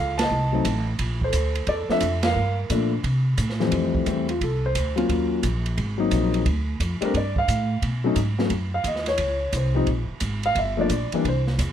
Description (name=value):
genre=jazz piano trio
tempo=176 BPM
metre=4/4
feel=swing 65% on 8ths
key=F major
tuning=A4 = 439 Hz
part: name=dark baby grand piano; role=melody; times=0.0-11.4 s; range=F2 to A5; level=-24 LUFS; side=left 2 dB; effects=none
part: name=upright bass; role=bass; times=0.0-11.7 s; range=G1 to C3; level=-25 LUFS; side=equal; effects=none
part: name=open jazz drum kit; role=drums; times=0.2-11.7 s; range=hi-hat, kick drum, ride cymbal, snare drum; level=-30 LUFS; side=right 3 dB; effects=none
room=light reverb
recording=none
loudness=-21 LUFS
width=side -10 dB against mid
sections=0.0-3.7 A section; 3.7-11.7 B section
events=band accent 0.1, 2.2; grand piano solo 3.7-11.7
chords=0.0 F7 (rootless); 1.0 Bbmaj7; 2.4 Gm7; 3.0 C5; 3.7 Fmaj9; 5.1 Ebm7; 5.8 Ab9; 6.5 Dmadd11; 7.8 Badd9; 9.2 Dbmaj7(no3); 10.6 Gm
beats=0.31 0.66 | 1.00 1.34 1.68 2.02 | 2.36 2.71 3.05 3.39 | 3.73 4.07 4.41 4.75 | 5.10 5.44 5.78 6.12 | 6.46 6.80 7.14 7.49 | 7.83 8.17 8.51 8.85 | 9.19 9.54 9.88 10.22 | 10.56 10.90 11.24 11.59